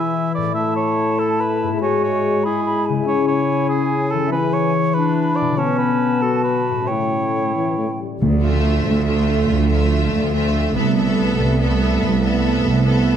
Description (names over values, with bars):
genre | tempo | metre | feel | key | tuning
cinematic | 95 BPM (dotted quarters) | 12/8 | straight | D dorian from 8.2 s | A4 = 440 Hz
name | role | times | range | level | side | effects
clear clarinet | second line | 0.0-8.0 s | C#4 to F#4 | -24 LUFS | left 1 dB | none
mellow cor anglais | second line | 0.0-8.0 s | G#4 to E5 | -23 LUFS | right 4 dB | none
mellow hollow silver concert flute | second line | 0.0-8.0 s | G5 to B5 | -26 LUFS | equal | none
dark French horn section | sustained chords | 0.0-8.2 s | E3 to C#4 | -22 LUFS | left 4 dB | none
concert harp | arpeggios | 0.0-13.2 s | G#2 to E5 | -25 LUFS | left 10 dB | none
clear trombone section | sustained chords | 8.2-13.2 s | D3 to B3 | -24 LUFS | right 6 dB | none
rich symphonic cello section | bass | 8.2-13.2 s | C2 to D2 | -21 LUFS | right 2 dB | none
rich symphonic double bass section | bass | 8.2-13.2 s | C2 to D2 | -20 LUFS | right 3 dB | none
timpani | percussion | 8.2-8.8 s | D3 | -24 LUFS | equal | none
rich studio violin section | melody | 8.4-13.2 s | E5 | -28 LUFS | left 5 dB | none
bright symphonic violin section | second line | 8.4-13.2 s | F4 to A4 | -29 LUFS | left 1 dB | none
clear symphonic viola section | accompaniment | 8.4-13.2 s | A3 to B3 | -23 LUFS | right 2 dB | none
room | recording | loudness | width
moderate recital hall reverb, RT60 1.4 s | none | -16 LUFS | side -9 dB against mid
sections
0.0-8.2 A section; 8.2-13.2 B section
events
none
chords
0.0 E; 0.5 A; 1.8 E/G#; 3.1 C#m; 4.3 E; 5.6 Bmadd9; 6.9 A7; 8.2 Dmadd9; 10.8 Amadd9/C